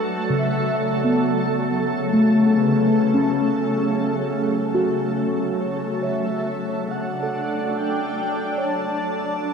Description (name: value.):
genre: ambient.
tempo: 69 BPM.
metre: 3/4.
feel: straight.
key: D major.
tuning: A4 = 440 Hz.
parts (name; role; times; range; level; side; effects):
shimmering ambient pad; sustained chords; 0.0-9.5 s; C#3 to A4; -22 LUFS; equal; chorus, built-in reverb.
muted felt-like synth keys; arpeggios; 0.0-9.5 s; C#3 to C#5; -22 LUFS; left 1 dB; chorus, tape echo.
breathy flute-like synth lead; melody; 0.4-9.5 s; A4 to A5; -30 LUFS; equal; analog chorus, tape echo.
room: wet lush hall reverb, RT60 2.7 s.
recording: dark, warm production.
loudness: -19 LUFS.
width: side -6 dB against mid.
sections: 0.8-9.5 A section.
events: fade-in on soft synth lead 0.8-9.5.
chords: 0.0 Dmaj7.